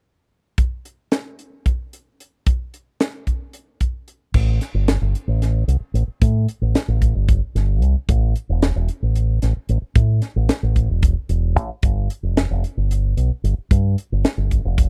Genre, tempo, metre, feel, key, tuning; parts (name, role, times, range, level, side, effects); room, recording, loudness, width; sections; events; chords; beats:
electric jazz fusion; 224 BPM (eighths); 7/8; straight; A minor; A4 = 439 Hz
crisp fusion drum kit; drums; 0.6-14.9 s; crash cymbal, hi-hat, kick drum, snare drum; -21 LUFS; equal
fingered electric bass with an envelope filter; bass; 4.3-14.9 s; E1 to A2; -20 LUFS; equal
little or no reverb; dry, close 1970s-style studio recording; -20 LUFS; mono
0.6-4.3 A section; 4.3-14.9 B section
| 0.59 0.86 1.12 1.39 1.66 1.93 2.20 | 2.47 2.73 3.00 3.27 3.54 3.81 4.08 | 4.34 4.61 4.88 5.15 5.42 5.68 5.95 | 6.22 6.49 6.75 7.02 7.29 7.56 7.82 | 8.09 8.36 8.63 8.89 9.16 9.43 9.70 | 9.96 10.23 10.50 10.77 11.04 11.30 11.57 | 11.84 12.11 12.37 12.64 12.91 13.18 13.44 | 13.71 13.98 14.25 14.51 14.78